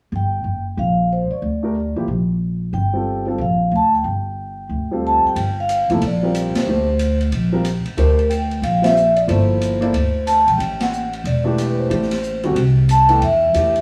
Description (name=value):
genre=modal jazz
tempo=183 BPM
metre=4/4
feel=swing 63% on 8ths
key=G dorian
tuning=A4 = 440 Hz
part: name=upright bass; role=bass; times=0.1-13.8 s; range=E1 to E2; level=-22 LUFS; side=equal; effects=none
part: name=vibraphone with soft mallets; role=melody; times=0.2-13.8 s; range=Bb4 to A5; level=-21 LUFS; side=equal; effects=none
part: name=warm concert grand piano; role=accompaniment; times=1.6-13.7 s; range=D3 to D5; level=-25 LUFS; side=equal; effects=none
part: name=open jazz drum kit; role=drums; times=5.4-13.8 s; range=hi-hat, ride cymbal, rim click, snare drum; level=-32 LUFS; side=equal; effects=none
room=moderate studio reverb, RT60 0.9 s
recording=heard from further back in the room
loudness=-18 LUFS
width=mono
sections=0.1-5.4 A section; 5.4-13.8 B section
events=band accent 6.5, 8.8, 10.8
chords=0.1 Gm11; 10.6 Am7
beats=| 0.11 0.44 0.77 1.10 | 1.42 1.75 2.08 2.41 | 2.73 3.06 3.39 3.72 | 4.04 4.37 4.70 5.03 | 5.36 5.68 6.01 6.34 | 6.67 6.99 7.32 7.65 | 7.97 8.30 8.63 8.96 | 9.28 9.61 9.94 10.27 | 10.59 10.92 11.25 11.58 | 11.90 12.23 12.56 12.89 | 13.22 13.54